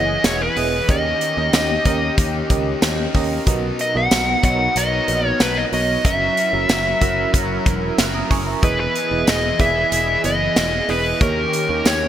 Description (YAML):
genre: 1980s-style pop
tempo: 93 BPM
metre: 4/4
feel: straight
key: B major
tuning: A4 = 440 Hz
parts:
  - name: dark smooth lead guitar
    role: melody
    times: 0.0-12.1 s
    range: A#4 to F#5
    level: -20 LUFS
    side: equal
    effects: overdrive
  - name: FM electric piano with tremolo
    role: accompaniment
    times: 0.0-12.1 s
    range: B2 to D#6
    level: -26 LUFS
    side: right 5 dB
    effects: none
  - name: cranked stack guitar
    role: accompaniment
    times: 0.0-12.1 s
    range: B2 to F#4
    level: -29 LUFS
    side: left 2 dB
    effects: overdrive, wide subtle chorus
  - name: warm analog pad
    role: sustained chords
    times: 0.0-12.1 s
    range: D#3 to D#5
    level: -27 LUFS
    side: left 1 dB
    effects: chorus
  - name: fingered electric bass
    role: bass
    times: 0.0-12.1 s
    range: E1 to D#2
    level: -25 LUFS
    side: left 1 dB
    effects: none
  - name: modern studio drum kit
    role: drums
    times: 0.2-12.0 s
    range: hi-hat, kick drum, snare drum, tambourine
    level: -20 LUFS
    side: equal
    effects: gated reverb
room: moderate lush hall reverb, RT60 3.1 s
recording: bright 1980s-style digital production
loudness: -16 LUFS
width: side -10 dB against mid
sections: 0.0-12.1 A section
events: FM electric piano fill 2.5-3.5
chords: 0.0 Emaj7; 0.9 D#7; 3.5 Bmaj7; 6.0 F#7; 8.6 Emaj7; 11.2 D#7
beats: 0.24 | 0.89 1.53 2.18 2.82 | 3.47 4.11 4.76 5.40 | 6.05 6.69 7.34 7.99 | 8.63 9.28 9.92 10.56 | 11.21 11.86